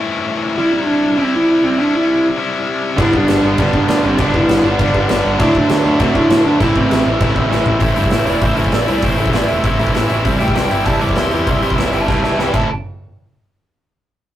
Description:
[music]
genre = punk rock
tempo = 199 BPM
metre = 4/4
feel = straight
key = A minor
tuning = A4 = 440 Hz
[part]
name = tight distorted guitar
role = riff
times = 0.0-12.7 s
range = G2 to E4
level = -19 LUFS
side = left 4 dB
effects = distortion
[part]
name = smooth overdriven lead guitar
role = melody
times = 0.6-12.7 s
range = B3 to D6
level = -17 LUFS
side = right 1 dB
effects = none
[part]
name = overdriven electric guitar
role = riff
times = 3.0-12.7 s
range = G2 to E4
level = -18 LUFS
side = right 3 dB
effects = none
[part]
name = fuzz picked electric bass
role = bass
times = 3.0-12.7 s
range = E1 to A2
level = -21 LUFS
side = equal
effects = overdrive
[part]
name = big rock drum kit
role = drums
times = 3.0-12.6 s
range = crash cymbal, hi-hat, kick drum, snare drum, toms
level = -18 LUFS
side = equal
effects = none
[sound]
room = moderate booth ambience, RT60 0.2 s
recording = rough rehearsal-room recording, tube saturation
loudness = -12 LUFS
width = side -12 dB against mid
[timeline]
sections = 0.0-7.8 A section; 7.8-12.7 B section; 12.7-13.9 C section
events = drum fill 7.5-7.8, 12.1-12.7; lead electric guitar solo 7.8-12.7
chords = 0.0 Am; 0.6 C; 3.0 G; 5.4 D; 6.6 Am; 10.2 C; 12.5 Am; 12.7 N.C.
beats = 0.28 | 0.58 0.88 1.18 1.48 | 1.79 2.09 2.39 2.69 | 2.99 3.29 3.59 3.89 | 4.20 4.50 4.80 5.10 | 5.40 5.70 6.00 6.31 | 6.61 6.91 7.21 7.51 | 7.82 8.12 8.42 8.73 | 9.03 9.34 9.64 9.94 | 10.25 10.55 10.86 11.16 | 11.47 11.78 12.08 12.39

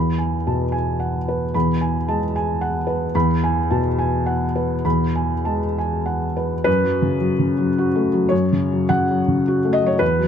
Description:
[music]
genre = neoclassical minimalist piano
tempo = 97-113 BPM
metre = 3/4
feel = rubato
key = unclear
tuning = A4 = 440 Hz
[part]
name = felt-muted upright piano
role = solo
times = 0.0-10.3 s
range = E2 to B5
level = -18 LUFS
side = equal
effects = none
[sound]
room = little or no reverb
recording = close, detailed microphones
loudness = -18 LUFS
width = side -8 dB against mid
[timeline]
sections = 0.0-6.7 A section; 6.7-10.3 B section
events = none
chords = 0.0 Eadd9; 6.7 F#m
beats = 0.47 1.01 | 1.55 2.08 2.61 | 3.14 3.69 4.25 | 4.84 5.45 6.06 | 6.66 7.22 7.77 | 8.32 8.91 9.46 | 10.01

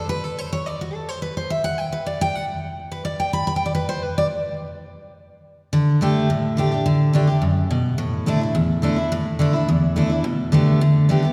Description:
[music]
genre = bluegrass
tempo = 213 BPM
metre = 4/4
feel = straight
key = unclear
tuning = A4 = 440 Hz
[part]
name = picked steel-string acoustic guitar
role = solo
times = 0.0-11.3 s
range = E2 to B5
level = -21 LUFS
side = equal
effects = none
[sound]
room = wet church reverb, RT60 2.6 s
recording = recorded in a church or concert hall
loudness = -21 LUFS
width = mono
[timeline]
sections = 0.0-5.7 A section; 5.7-11.3 B section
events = steel-string acoustic guitar solo 0.0-5.7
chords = 0.0 N.C.; 5.7 Dsus4; 8.0 Asus4; 10.2 Gadd9/B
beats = | 0.10 0.38 0.66 0.94 | 1.22 1.50 1.79 2.07 | 2.35 2.63 2.91 3.19 | 3.48 3.76 4.04 4.32 | 4.60 4.88 5.16 5.45 | 5.73 6.01 6.29 6.57 | 6.86 7.14 7.42 7.70 | 7.99 8.27 8.55 8.83 | 9.11 9.40 9.68 9.96 | 10.24 10.53 10.81 11.09

